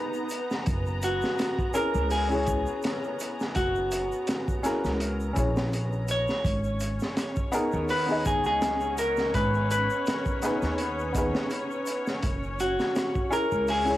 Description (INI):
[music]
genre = trip hop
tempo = 83 BPM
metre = 4/4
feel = swing 55% on 16ths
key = G# minor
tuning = A4 = 440 Hz
[part]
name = clean electric guitar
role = melody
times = 0.0-14.0 s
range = D#4 to C#5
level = -29 LUFS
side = equal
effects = tape echo
[part]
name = warm upright piano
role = accompaniment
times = 0.0-14.0 s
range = B3 to D#5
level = -31 LUFS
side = left 1 dB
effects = harmonic tremolo, cassette tape, tape echo
[part]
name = muted studio string section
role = sustained chords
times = 0.0-14.0 s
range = B3 to A#5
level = -37 LUFS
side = equal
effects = cassette tape
[part]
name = tube shaker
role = percussion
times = 0.1-14.0 s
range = none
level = -45 LUFS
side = right 4 dB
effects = none
[part]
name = crunchy breakbeat drum kit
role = drums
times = 0.3-13.9 s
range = hi-hat, kick drum, snare drum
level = -31 LUFS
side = equal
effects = none
[part]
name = upright bass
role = bass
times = 0.7-14.0 s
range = F#1 to D#2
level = -30 LUFS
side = equal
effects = none
[sound]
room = light reverb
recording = home recording on cassette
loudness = -25 LUFS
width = side -14 dB against mid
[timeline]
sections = 0.0-14.0 A section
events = none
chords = 0.0 G#madd9; 0.7 F#7; 6.4 G#m; 12.2 F#7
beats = | 0.67 1.39 2.11 2.83 | 3.56 4.28 5.00 5.73 | 6.45 7.17 7.89 8.62 | 9.34 10.06 10.79 11.51 | 12.23 12.96 13.68